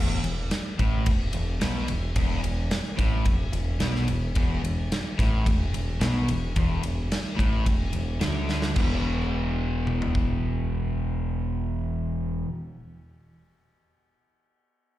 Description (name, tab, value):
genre	blues rock power trio and southern rock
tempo	109 BPM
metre	4/4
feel	straight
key	unclear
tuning	A4 = 435 Hz
part	crunchy overdriven guitar	riff	0.0-12.5 s	E2 to E3	-29 LUFS	left 1 dB	slapback echo
part	growling fingered electric bass	bass	0.0-12.4 s	E1 to D2	-28 LUFS	equal	overdrive
part	big rock drum kit	drums	0.2-10.3 s	crash cymbal, kick drum, ride cymbal, snare drum, toms	-27 LUFS	equal	none
room	light reverb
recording	live gig heard through the venue's PA, recital hall reverb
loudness	-24 LUFS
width	side -14 dB against mid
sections	0.0-8.8 A section; 8.8-11.0 B section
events	drum fill 8.5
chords	0.0 E5